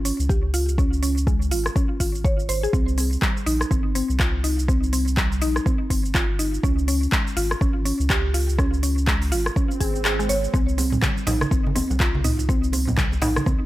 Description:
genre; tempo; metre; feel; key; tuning
afro house; 123 BPM; 4/4; swing 59% on 16ths; C phrygian; A4 = 438 Hz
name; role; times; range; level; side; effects
round analog bass; bass; 0.0-13.4 s; G1 to Db2; -24 LUFS; equal; sidechain pumping
mallet-like synth pluck; arpeggios; 0.1-13.6 s; G3 to Db5; -26 LUFS; equal; chorus, sidechain pumping, tape echo
afro-pop drum kit; drums; 0.1-13.6 s; handclaps, hi-hat, rim click, shaker, toms; -27 LUFS; equal; none
electronic kick drum; drums; 0.3-13.6 s; none; -22 LUFS; equal; none
swell; sound effects; 9.7-10.5 s; none; -32 LUFS; right 1 dB; none
djembe; percussion; 10.5-13.6 s; none; -31 LUFS; left 1 dB; none
congas; percussion; 10.8-13.6 s; none; -30 LUFS; right 3 dB; none
room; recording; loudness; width
little or no reverb; none; -19 LUFS; side -16 dB against mid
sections
0.0-13.7 A section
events
swell 9.7-10.5; kick drops out 10.1-10.5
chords
0.0 Db5; 2.7 C5; 6.6 Db5; 10.5 C5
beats
0.29 | 0.78 1.27 1.76 2.25 | 2.73 3.22 3.71 4.20 | 4.68 5.17 5.66 6.15 | 6.64 7.12 7.61 8.10 | 8.59 9.07 9.56 10.05 | 10.54 11.03 11.51 12.00 | 12.49 12.98 13.47

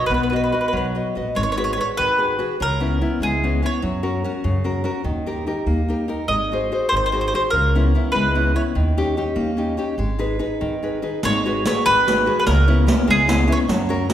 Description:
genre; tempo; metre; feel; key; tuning
italian folk, Italian serenade; 98 BPM (dotted quarters); 6/8; rubato; G# minor; A4 = 440 Hz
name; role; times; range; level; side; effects
mandolin; melody; 0.0-3.8, 6.3-8.6, 11.2-13.6 s; G#4 to D#5; -20 LUFS; equal; none
nylon-string guitar; accompaniment; 0.0-14.1 s; C#3 to D#5; -22 LUFS; left 2 dB; none
upright bass; bass; 0.0-14.1 s; G#1 to F#2; -22 LUFS; right 1 dB; none
riq; percussion; 11.2-14.1 s; none; -23 LUFS; right 2 dB; none
room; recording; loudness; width
wet recital hall reverb, RT60 1.6 s; recorded in a church or concert hall; -18 LUFS; side -11 dB against mid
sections
0.0-1.4 A section; 1.4-11.2 B section; 11.2-14.1 B section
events
none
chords
0.0 B; 1.4 G#m7; 2.6 C#m7; 3.8 F#; 5.0 D#; 6.3 G#7; 7.5 C#m7; 8.8 D#7; 10.0 G#m; 11.2 G#m7; 12.5 C#m7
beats
| 0.10 0.73 | 1.36 1.99 | 2.60 3.22 | 3.83 4.44 | 5.05 5.67 | 6.29 6.92 | 7.53 8.14 | 8.75 9.36 | 9.98 10.61 | 11.24 11.86 | 12.47 13.08 | 13.69

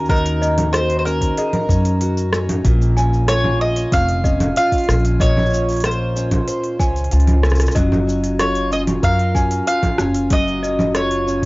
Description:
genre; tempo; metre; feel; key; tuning
folktronica; 94 BPM; 4/4; straight; unclear; A4 = 440 Hz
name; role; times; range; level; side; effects
mandolin; melody; 0.0-11.5 s; Bb4 to F5; -21 LUFS; equal; cassette tape, tape echo
worn celesta; second line; 0.0-11.5 s; Eb5 to Ab5; -27 LUFS; left 1 dB; plate reverb, tape echo
fingerpicked twelve-string acoustic guitar; arpeggios; 0.0-11.5 s; Bb2 to C5; -23 LUFS; equal; none
upright bass; bass; 0.0-11.5 s; F1 to Gb2; -18 LUFS; equal; none
electronic kick drum; drums; 0.1-11.5 s; none; -19 LUFS; equal; cassette tape
organic electronic drum kit; drums; 0.1-11.5 s; cabasa, congas, hi-hat, rim click; -23 LUFS; equal; cassette tape
room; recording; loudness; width
light reverb; home recording on cassette, nothing above 7.6 kHz; -15 LUFS; side -22 dB against mid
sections
0.0-11.5 A section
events
none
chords
0.0 Ebm7; 2.6 Bbmadd9; 7.8 Gbmaj7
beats
| 0.10 0.74 1.37 2.01 | 2.65 3.29 3.93 4.57 | 5.20 5.84 6.48 7.12 | 7.76 8.39 9.03 9.67 | 10.31 10.95

